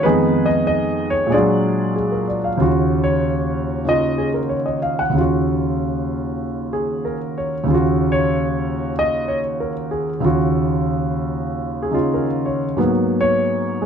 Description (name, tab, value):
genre	solo jazz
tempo	94 BPM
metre	4/4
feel	swing 66% on 8ths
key	Eb minor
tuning	A4 = 440 Hz
part	warm concert grand piano	solo	0.0-13.9 s	Eb2 to Gb5	-17 LUFS	equal	none
room	light reverb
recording	dark, warm production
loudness	-17 LUFS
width	side -7 dB against mid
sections	0.0-2.6 A section; 2.6-13.9 B section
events	grand piano solo 2.6-13.9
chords	0.0 Fm7b5; 1.3 Bb7b13; 2.6 Ebm9; 12.8 Abm9